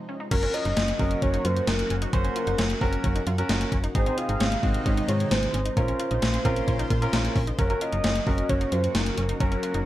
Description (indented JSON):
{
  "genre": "synth-pop",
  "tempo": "132 BPM",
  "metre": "4/4",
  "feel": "straight",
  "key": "unclear",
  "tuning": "A4 = 436 Hz",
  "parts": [
    { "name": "lush unison pad", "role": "sustained chords", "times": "0.0-9.9 s", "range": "C3 to C5", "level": "-33 LUFS", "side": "equal", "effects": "chorus, phaser" },
    { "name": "wide unison pluck", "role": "arpeggios", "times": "0.1-9.8 s", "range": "C4 to F4", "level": "-36 LUFS", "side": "equal", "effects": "digital delay" },
    { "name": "mellow horn-like synth lead", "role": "melody", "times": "0.3-9.9 s", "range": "Bb4 to F5", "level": "-30 LUFS", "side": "equal", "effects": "chorus" },
    { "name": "warm concert grand piano", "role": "accompaniment", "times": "0.3-9.9 s", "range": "C4 to C5", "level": "-31 LUFS", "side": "right 1 dB", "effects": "none" },
    { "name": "solid FM bass", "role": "bass", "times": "0.3-9.8 s", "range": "Gb1 to Bb2", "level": "-27 LUFS", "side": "equal", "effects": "none" },
    { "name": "gated 80s digital drum machine", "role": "drums", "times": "0.3-9.8 s", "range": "crash cymbal, hi-hat, kick drum, snare drum", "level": "-26 LUFS", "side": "equal", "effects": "gated reverb, gated reverb snare" }
  ],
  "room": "moderate studio reverb, RT60 0.5 s",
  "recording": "none",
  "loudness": "-22 LUFS",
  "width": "side -14 dB against mid",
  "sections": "0.3-9.9 A section",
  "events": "break 0.0-0.3",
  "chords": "0.3 Gb; 4.0 Ab; 5.8 Bbmadd9; 7.6 Gb",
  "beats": "| 0.31 0.77 1.22 1.68 | 2.13 2.59 3.04 3.50 | 3.95 4.41 4.86 5.31 | 5.77 6.22 6.68 7.13 | 7.59 8.04 8.50 8.95 | 9.40"
}